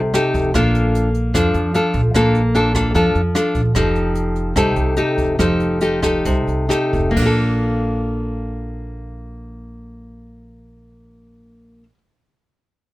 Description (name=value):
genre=bossa nova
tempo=127-150 BPM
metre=4/4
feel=straight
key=Bb major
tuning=A4 = 439 Hz
part: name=nylon-string guitar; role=accompaniment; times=0.0-12.0 s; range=C3 to A4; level=-18 LUFS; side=left 1 dB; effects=none
part: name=upright bass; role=bass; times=0.0-11.8 s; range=F1 to F2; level=-21 LUFS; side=right 1 dB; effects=none
part: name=jazz brush drum kit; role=drums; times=0.1-7.3 s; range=crash cymbal, hi-hat, kick drum, rim click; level=-26 LUFS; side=equal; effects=none
room=light reverb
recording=none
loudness=-15 LUFS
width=side -18 dB against mid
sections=0.0-7.2 A section; 7.2-10.9 B section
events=slowing down 3.7-7.2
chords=0.0 F9; 0.5 Bbmaj7; 3.7 F9; 7.2 Bbmaj7